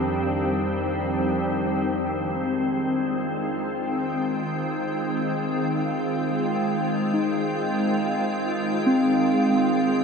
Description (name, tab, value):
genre	ambient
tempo	free time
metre	none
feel	none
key	F dorian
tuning	A4 = 440 Hz
part	soft additive organ-like pad	sustained chords	0.0-10.0 s	F2 to G5	-23 LUFS	equal	ensemble chorus, built-in reverb
part	wind-like tuned noise texture	texture	0.0-1.9 s	none	barely audible	none	none
part	muted felt-like synth keys	arpeggios	2.8-10.0 s	C4 to Ab4	-26 LUFS	equal	chorus, dub echo
room	wet spring reverb, RT60 2.7 s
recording	echo-heavy mix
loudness	-22 LUFS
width	side -5 dB against mid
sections	0.0-1.9 A section; 1.9-10.0 B section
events	fade-in on synth keys 1.9-10.0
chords	0.0 Cmadd9/F; 1.9 Fm9